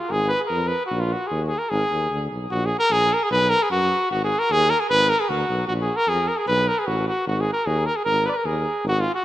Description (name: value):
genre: balkan folk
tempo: 152 BPM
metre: 2/4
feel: swing 55% on 16ths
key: Ab dorian sharp4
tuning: A4 = 440 Hz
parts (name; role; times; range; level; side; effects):
- warm cornet; melody; 0.0-9.2 s; F4 to D5; -20 LUFS; equal; none
- warm tuba; bass; 0.1-9.1 s; Ab1 to F#2; -26 LUFS; equal; none
room: moderate lush hall reverb, RT60 2.9 s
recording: rough home demo mix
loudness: -19 LUFS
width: side -14 dB against mid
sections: 0.0-2.5 A section; 2.5-8.8 B section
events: none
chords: 0.0 Ab5; 0.9 Gb69/Bb; 1.7 Abm; 2.5 Gbadd9/Bb; 3.3 B5; 4.1 Abm; 5.7 Bb5; 6.5 Gbmadd11; 7.3 Ab5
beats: | 0.11 0.52 | 0.92 1.32 | 1.72 2.12 | 2.52 2.91 | 3.31 3.71 | 4.10 4.50 | 4.90 5.29 | 5.69 6.08 | 6.47 6.87 | 7.26 7.66 | 8.05 8.44 | 8.84 9.23